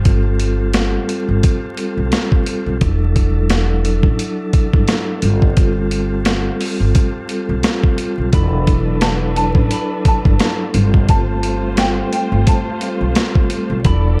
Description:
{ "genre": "hip hop, boom-bap hip-hop", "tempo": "87 BPM", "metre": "4/4", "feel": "swing 57% on 16ths", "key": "unclear", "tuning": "A4 = 442 Hz", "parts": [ { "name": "vibraphone with soft mallets", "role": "accompaniment", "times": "0.0-14.2 s", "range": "F#3 to A4", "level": "-24 LUFS", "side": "equal", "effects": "high-pass filter, low-pass filter, dub echo" }, { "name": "tonewheel organ", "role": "sustained chords", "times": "0.0-14.2 s", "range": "F#4 to A5", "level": "-35 LUFS", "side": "equal", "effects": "overdrive, fast rotary speaker, high-pass filter, low-pass filter" }, { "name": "upright bass", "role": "bass", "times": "0.0-14.2 s", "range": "E1 to B1", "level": "-20 LUFS", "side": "equal", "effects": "none" }, { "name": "boom bap sampler-style drum kit", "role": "drums", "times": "0.1-14.0 s", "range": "hi-hat, kick drum, snare drum", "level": "-18 LUFS", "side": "equal", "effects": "none" }, { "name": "nylon-string guitar", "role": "melody", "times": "8.3-14.2 s", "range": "F5 to B5", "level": "-26 LUFS", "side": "equal", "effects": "high-pass filter, low-pass filter, dub echo" }, { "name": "warm studio string section", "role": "stabs", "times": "8.3-14.2 s", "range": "F#3 to D5", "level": "-29 LUFS", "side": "equal", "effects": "high-pass filter, low-pass filter, dub echo" } ], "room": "light reverb, studio ambience", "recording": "echo-heavy mix, vinyl crackle", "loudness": "-16 LUFS", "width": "mono", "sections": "0.0-8.3 A section; 8.3-14.2 B section", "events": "none", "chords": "0.0 G9sus4; 2.8 E9sus4; 5.2 G9sus4; 8.3 E9sus4; 10.7 G9sus4" }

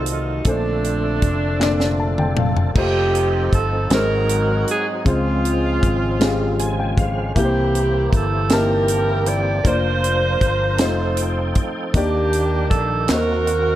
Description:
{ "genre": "slow gospel", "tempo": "52 BPM (dotted quarters)", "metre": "6/8", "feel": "straight", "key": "Bb major", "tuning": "A4 = 441 Hz", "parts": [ { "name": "warm saxophone section", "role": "melody", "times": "0.0-13.8 s", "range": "F3 to D5", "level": "-21 LUFS", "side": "right 2 dB", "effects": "slapback echo" }, { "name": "warm upright piano", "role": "accompaniment", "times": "0.0-13.8 s", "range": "Ab2 to A5", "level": "-24 LUFS", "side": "left 2 dB", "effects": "none" }, { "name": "tonewheel organ", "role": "sustained chords", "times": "0.0-13.8 s", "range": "Db3 to Ab5", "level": "-28 LUFS", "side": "right 2 dB", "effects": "slow rotary speaker, overdrive, chorus vibrato" }, { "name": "fingered electric bass", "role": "bass", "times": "0.0-13.8 s", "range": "F1 to Eb2", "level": "-22 LUFS", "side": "equal", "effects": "none" }, { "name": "tight funk drum kit", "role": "drums", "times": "0.1-13.7 s", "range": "crash cymbal, hi-hat, kick drum, snare drum, toms", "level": "-21 LUFS", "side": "equal", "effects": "none" }, { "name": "group handclap", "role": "percussion", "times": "1.6-2.0, 13.1-13.5 s", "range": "none", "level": "-30 LUFS", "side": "left 3 dB", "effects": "none" } ], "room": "light reverb, small room ambience", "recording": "none", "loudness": "-16 LUFS", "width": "side -13 dB against mid", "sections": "0.0-2.8 A section; 2.8-13.8 B section", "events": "drum fill 1.6-2.8; upright piano fill 1.6-2.8, 6.2-7.4; tonewheel organ fill 6.2-7.4, 10.8-11.9", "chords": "0.5 Bbmaj9; 2.8 F7; 3.9 Ab7; 5.1 Dbmaj7; 7.4 C7; 9.7 Bb/F; 10.8 F7; 11.9 Ebmaj7; 13.1 Ebm6" }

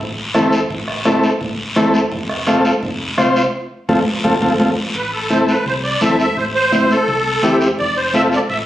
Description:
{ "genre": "latin, cumbia", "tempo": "169 BPM", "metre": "4/4", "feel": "straight", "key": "A minor", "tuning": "A4 = 439 Hz", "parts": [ { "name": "deep dub fingered electric bass", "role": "bass", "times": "0.0-8.7 s", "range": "F1 to F2", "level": "-28 LUFS", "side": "equal", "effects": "none" }, { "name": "congas", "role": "percussion", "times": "0.0-8.7 s", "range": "none", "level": "-21 LUFS", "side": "right 1 dB", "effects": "none" }, { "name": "combo organ", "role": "accompaniment", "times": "0.3-8.4 s", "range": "C4 to C5", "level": "-16 LUFS", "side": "left 1 dB", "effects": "none" }, { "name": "bombo", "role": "percussion", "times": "0.3-4.7 s", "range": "none", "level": "-25 LUFS", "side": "right 1 dB", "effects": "none" }, { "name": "guiro", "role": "percussion", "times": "0.3-8.7 s", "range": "none", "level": "-25 LUFS", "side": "left 1 dB", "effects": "none" }, { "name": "musette accordion", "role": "melody", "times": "5.0-8.6 s", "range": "A4 to E5", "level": "-18 LUFS", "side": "right 1 dB", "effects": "none" } ], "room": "wet small room reverb, RT60 0.5 s", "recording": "recorded on a phone in the room, studio reverb", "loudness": "-14 LUFS", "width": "side -13 dB against mid", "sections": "0.0-4.9 A section; 4.9-8.7 B section", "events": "band accent 3.5-4.9", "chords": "0.0 Am; 2.1 F; 4.9 Am; 7.8 F" }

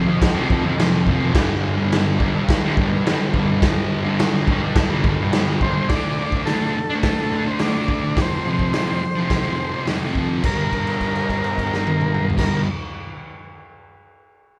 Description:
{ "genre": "garage rock duo or trio", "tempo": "106 BPM", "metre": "4/4", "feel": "straight", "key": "G minor", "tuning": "A4 = 440 Hz", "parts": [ { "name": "fuzz guitar", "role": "riff", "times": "0.0-12.7 s", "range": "F2 to D4", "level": "-23 LUFS", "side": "equal", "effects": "distortion" }, { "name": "raw garage drum kit", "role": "drums", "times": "0.2-12.5 s", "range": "crash cymbal, hi-hat, kick drum, snare drum, toms", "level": "-24 LUFS", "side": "equal", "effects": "none" }, { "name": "overdriven combo organ", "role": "melody", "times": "5.6-12.6 s", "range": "A4 to D5", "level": "-28 LUFS", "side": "equal", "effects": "none" } ], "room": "light reverb", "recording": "band playing live in one room", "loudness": "-20 LUFS", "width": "mono", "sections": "0.0-5.9 A section; 5.9-10.4 B section; 10.4-12.7 C section", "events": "held note 10.4-12.4", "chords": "0.0 F5; 1.4 G5; 5.9 D5; 8.2 F5; 10.4 Gm" }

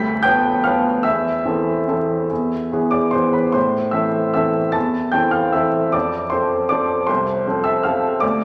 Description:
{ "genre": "classical, piano waltz", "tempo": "140-165 BPM", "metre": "3/4", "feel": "rubato", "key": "A minor", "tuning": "A4 = 440 Hz", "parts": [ { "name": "clear upright piano", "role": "solo", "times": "0.0-8.4 s", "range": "C2 to B6", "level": "-19 LUFS", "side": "equal", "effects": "none" } ], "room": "wet recital hall reverb, RT60 1.8 s", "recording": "vinyl crackle", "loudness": "-19 LUFS", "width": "mono", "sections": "0.0-8.4 A section", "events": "none", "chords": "0.0 Bdim/D; 1.0 Am/E; 2.3 E; 3.6 Am; 5.9 F" }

